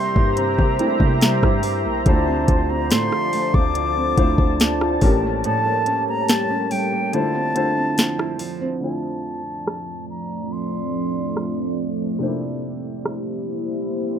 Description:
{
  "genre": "contemporary R&B",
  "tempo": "71 BPM",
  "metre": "4/4",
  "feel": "straight",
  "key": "D minor",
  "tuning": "A4 = 440 Hz",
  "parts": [
    { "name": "concert flute", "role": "melody", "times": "0.0-11.8 s", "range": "G5 to D6", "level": "-26 LUFS", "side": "left 1 dB", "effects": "none" },
    { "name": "felt-muted upright piano", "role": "accompaniment", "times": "0.0-14.2 s", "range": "A2 to C5", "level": "-27 LUFS", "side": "left 2 dB", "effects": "none" },
    { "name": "deep dark ambient pad", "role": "sustained chords", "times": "0.0-14.2 s", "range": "F3 to C6", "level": "-24 LUFS", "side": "equal", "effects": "chorus, built-in reverb" },
    { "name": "nylon-string guitar", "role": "arpeggios", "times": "0.0-9.4 s", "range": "A2 to F4", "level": "-25 LUFS", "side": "right 4 dB", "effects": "none" },
    { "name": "warm 808-style bass", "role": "bass", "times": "0.2-5.4 s", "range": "A1 to C3", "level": "-25 LUFS", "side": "equal", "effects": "none" },
    { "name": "smooth R&B drum kit", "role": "drums", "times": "0.2-13.2 s", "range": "hi-hat, kick drum, rim click, snare drum", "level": "-19 LUFS", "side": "equal", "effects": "none" }
  ],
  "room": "light reverb",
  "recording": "rough home demo mix, low-pass filter",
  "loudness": "-18 LUFS",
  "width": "side -9 dB against mid",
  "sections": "0.0-8.8 A section; 8.8-14.2 B section",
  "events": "break 5.4-8.8",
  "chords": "0.0 C7; 2.1 Dm7; 5.0 A7b9; 7.1 Dm9; 12.2 C7"
}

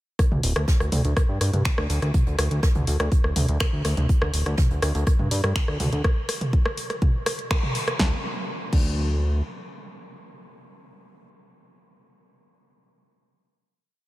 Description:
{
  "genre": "melodic techno",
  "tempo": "123 BPM",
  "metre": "4/4",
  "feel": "straight",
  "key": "unclear",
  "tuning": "A4 = 440 Hz",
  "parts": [
    { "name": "electronic kick drum", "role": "drums", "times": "0.2-8.9 s", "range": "none", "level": "-21 LUFS", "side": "equal", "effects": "studio reverb" },
    { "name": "house drum kit", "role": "drums", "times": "0.2-8.9 s", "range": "crash cymbal, finger snaps, hi-hat, rim click, snare drum, toms", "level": "-27 LUFS", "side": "equal", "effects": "studio reverb, sidechain pumping on hats, sidechain pumping on toms, sidechain pumping on cymbals" },
    { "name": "jazz brush drum kit", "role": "drums", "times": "0.2-5.9 s", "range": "hi-hat, snare drum", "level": "-39 LUFS", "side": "right 3 dB", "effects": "high-pass filter on hats, studio reverb, high-pass filter on snare, high-pass filter on room" },
    { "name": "fat analog bass", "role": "bass", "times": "0.3-9.4 s", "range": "D1 to G2", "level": "-23 LUFS", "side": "equal", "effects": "sidechain pumping" }
  ],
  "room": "light reverb, small room reverb",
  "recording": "none",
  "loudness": "-21 LUFS",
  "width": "side -17 dB against mid",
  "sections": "0.2-8.0 drop; 8.0-11.9 final note",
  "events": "drop 0.2-8.0; band accent 7.5",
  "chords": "none"
}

